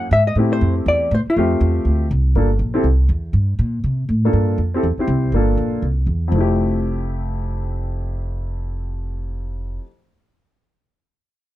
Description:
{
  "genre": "jazz, small-group swing and bop",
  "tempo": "241 BPM",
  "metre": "4/4",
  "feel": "swing 58% on 8ths",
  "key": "F major",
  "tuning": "A4 = 440 Hz",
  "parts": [
    { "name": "hollow-body jazz guitar", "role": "melody", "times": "0.0-2.1 s", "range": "F4 to Gb5", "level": "-20 LUFS", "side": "left 1 dB", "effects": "none" },
    { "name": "warm baby grand piano", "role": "accompaniment", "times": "0.0-9.9 s", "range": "F2 to E5", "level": "-22 LUFS", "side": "left 1 dB", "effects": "none" },
    { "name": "upright bass", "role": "bass", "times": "0.0-9.8 s", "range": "F1 to C3", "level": "-18 LUFS", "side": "equal", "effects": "none" }
  ],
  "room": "little or no reverb",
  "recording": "close, detailed microphones",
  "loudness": "-17 LUFS",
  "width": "side -14 dB against mid",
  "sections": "0.0-2.3 A section; 2.3-6.3 B section; 6.3-8.3 C section",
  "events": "none",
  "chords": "0.4 Fmaj7; 2.3 Gm7; 2.8 C; 3.3 Gm; 3.8 Amadd11; 4.3 Gm7; 4.8 C; 5.3 Gm7; 5.8 C; 6.3 Fmaj7"
}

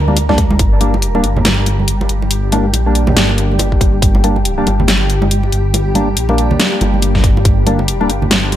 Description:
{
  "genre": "deep dubstep",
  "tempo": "140 BPM",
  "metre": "4/4",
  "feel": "swing 59% on 16ths, half-time",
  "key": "G minor",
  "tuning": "A4 = 440 Hz",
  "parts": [
    { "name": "granular cloud pad", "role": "sustained chords", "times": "0.0-8.6 s", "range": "G3 to C5", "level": "-21 LUFS", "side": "left 1 dB", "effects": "built-in reverb" },
    { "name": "dark detuned saw bass", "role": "bass", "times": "0.0-8.6 s", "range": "G1 to D2", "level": "-15 LUFS", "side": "equal", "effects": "none" },
    { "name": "percussive organ stab", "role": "stabs", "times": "0.1-8.1 s", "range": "G3 to D4", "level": "-19 LUFS", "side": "left 1 dB", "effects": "analog chorus, dub echo" },
    { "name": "congas", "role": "percussion", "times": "0.1-8.6 s", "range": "none", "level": "-21 LUFS", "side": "right 2 dB", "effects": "dub echo" },
    { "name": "dubstep drum kit", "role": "drums", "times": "0.2-8.6 s", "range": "hi-hat, snare drum", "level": "-16 LUFS", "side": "equal", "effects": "none" },
    { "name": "electronic kick drum", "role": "drums", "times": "0.3-0.7, 3.7-4.1, 7.1-7.6 s", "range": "none", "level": "-13 LUFS", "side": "equal", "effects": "none" }
  ],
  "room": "light reverb, digital ambience",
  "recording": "none",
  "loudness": "-11 LUFS",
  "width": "side -12 dB against mid",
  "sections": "0.0-8.6 A section",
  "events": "none",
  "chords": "0.0 Gm"
}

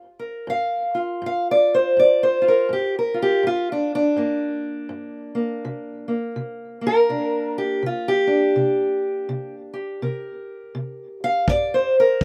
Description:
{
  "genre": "acoustic country blues, solo or duo",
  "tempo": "82 BPM",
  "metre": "4/4",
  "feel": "swing 60% on 8ths",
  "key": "G minor",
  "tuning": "A4 = 440 Hz",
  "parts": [
    { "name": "fingerpicked steel-string acoustic guitar", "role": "melody", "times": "0.0-12.2 s", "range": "G2 to F5", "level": "-22 LUFS", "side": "equal", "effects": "none" },
    { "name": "kick drum", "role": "drums", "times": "11.5-12.2 s", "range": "none", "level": "-24 LUFS", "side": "equal", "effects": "none" }
  ],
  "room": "little or no reverb",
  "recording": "recorded outdoors, with no room sound",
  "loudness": "-21 LUFS",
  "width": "mono",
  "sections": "0.0-12.2 A section",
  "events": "steel-string acoustic guitar solo 0.0-12.2",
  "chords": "0.0 Gm7; 5.6 Csus2; 11.5 Gm"
}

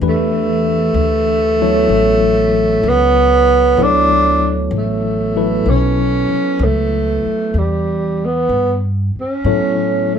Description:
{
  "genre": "jazz ballad",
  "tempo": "64 BPM",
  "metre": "4/4",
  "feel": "swing 69% on 8ths",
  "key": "unclear",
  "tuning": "A4 = 440 Hz",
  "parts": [
    { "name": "tine electric piano", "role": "accompaniment", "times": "0.0-10.2 s", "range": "E3 to C#5", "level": "-18 LUFS", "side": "left 2 dB", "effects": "medium stereo tremolo" },
    { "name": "upright bass", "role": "bass", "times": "0.0-10.2 s", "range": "A1 to A2", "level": "-19 LUFS", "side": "equal", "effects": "none" },
    { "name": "breathy tenor saxophone", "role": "melody", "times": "0.1-10.2 s", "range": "G3 to D4", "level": "-14 LUFS", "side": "right 2 dB", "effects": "none" }
  ],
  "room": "light reverb",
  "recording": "minimal, uncompressed stereo recording",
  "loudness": "-12 LUFS",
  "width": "side -8 dB against mid",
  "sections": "0.0-10.2 A section",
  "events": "none",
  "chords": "0.0 Em11; 1.9 Aadd9; 3.8 Dmaj9; 5.7 B9sus4; 7.5 Em; 9.4 A69"
}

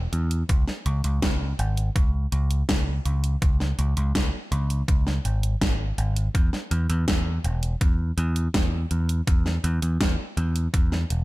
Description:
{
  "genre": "synthwave",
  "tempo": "82 BPM",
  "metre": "4/4",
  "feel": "straight",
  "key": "C# minor",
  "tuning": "A4 = 440 Hz",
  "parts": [
    { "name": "picked electric bass", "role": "bass", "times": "0.0-11.2 s", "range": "E1 to E2", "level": "-23 LUFS", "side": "equal", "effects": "sidechain pumping" },
    { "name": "pop drum kit", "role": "drums", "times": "0.1-11.2 s", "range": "hi-hat, snare drum", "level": "-29 LUFS", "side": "equal", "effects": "gated reverb" },
    { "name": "electronic kick drum", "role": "drums", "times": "0.5-10.9 s", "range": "none", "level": "-22 LUFS", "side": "equal", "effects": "overdrive" }
  ],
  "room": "little or no reverb",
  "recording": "none",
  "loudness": "-22 LUFS",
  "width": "side -19 dB against mid",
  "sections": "0.0-11.2 A section",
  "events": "none",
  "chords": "none"
}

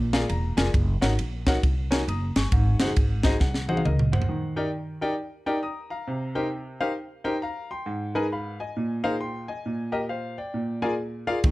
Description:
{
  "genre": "uptempo gospel",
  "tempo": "135 BPM",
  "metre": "4/4",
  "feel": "swing 63% on 8ths",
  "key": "Eb major from 4.3 s",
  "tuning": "A4 = 441 Hz",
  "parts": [
    { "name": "clear concert grand piano", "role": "accompaniment", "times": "0.0-11.5 s", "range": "Ab2 to Eb6", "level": "-28 LUFS", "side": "left 1 dB", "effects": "plate reverb" },
    { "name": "upright bass", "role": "bass", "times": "0.0-4.3, 11.4-11.5 s", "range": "Fb1 to Eb2", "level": "-26 LUFS", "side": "equal", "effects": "none" },
    { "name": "crisp fusion drum kit", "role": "drums", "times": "0.1-4.3, 11.4-11.5 s", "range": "kick drum, ride cymbal, snare drum, toms", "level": "-24 LUFS", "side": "equal", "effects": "vintage 12-bit sampler grit" }
  ],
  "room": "light reverb",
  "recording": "none",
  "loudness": "-24 LUFS",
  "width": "side -19 dB against mid",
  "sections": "0.0-4.3 A section; 4.3-11.5 A section",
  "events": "grand piano fill 0.0-0.7, 3.0-4.3; drum fill 3.4-4.3",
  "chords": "0.0 Bb7; 0.7 Ebm7/Gb; 2.5 Ab7; 4.3 Ebmaj7; 6.1 Cm7; 7.9 Abm; 8.8 Bb9sus4; 9.7 Eb/Bb; 10.5 Bb7"
}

